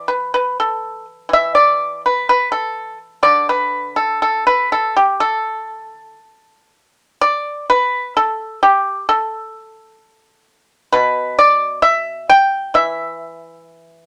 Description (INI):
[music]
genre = chinese traditional, Chinese solo plucked strings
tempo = 59-66 BPM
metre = 2/4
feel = rubato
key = unclear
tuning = A4 = 441 Hz
[part]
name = pipa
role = solo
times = 0.0-14.1 s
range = B2 to G5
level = -16 LUFS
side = equal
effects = none
[sound]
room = moderate studio reverb, RT60 0.5 s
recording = none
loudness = -16 LUFS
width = mono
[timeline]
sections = 0.0-7.2 A section; 7.2-14.1 B section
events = none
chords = none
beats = 0.34 | 1.32 2.29 | 3.26 4.22 | 5.20 6.20 | 7.19 8.15 | 9.09 10.02 | 10.94 11.86 | 12.78 13.71